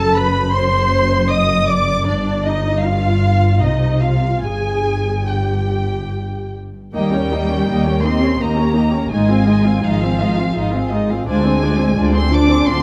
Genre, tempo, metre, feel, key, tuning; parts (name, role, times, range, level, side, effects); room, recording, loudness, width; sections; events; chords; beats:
classical, slow romantic movement for string orchestra; 69-87 BPM; 3/4; rubato; A4 = 440 Hz
muted chamber violin section; melody; 0.0-12.8 s; D5 to Eb6; -26 LUFS; equal
muted chamber violin section; second line; 0.0-12.8 s; F4 to Eb6; -28 LUFS; equal
muted chamber viola section; accompaniment; 0.0-12.8 s; Ab3 to Eb5; -23 LUFS; equal
muted chamber cello section; bass; 0.0-12.8 s; F#2 to D4; -21 LUFS; equal
muted chamber double bass section; bass; 0.0-12.8 s; F#1 to Eb2; -22 LUFS; equal
moderate recital hall reverb, RT60 1.7 s; -17 LUFS; mono
0.0-6.9 A section; 6.9-12.8 B section
0.0 D13b9/F#; 2.1 Ebmaj9/G; 3.6 Cm; 4.4 N.C.; 6.9 Eb7; 9.1 Ab6; 11.3 Dm7b5
0.53 1.30 | 2.07 2.83 3.61 | 4.43 5.26 6.10 | 6.94 7.69 8.40 | 9.12 9.84 10.56 | 11.28 11.97 12.68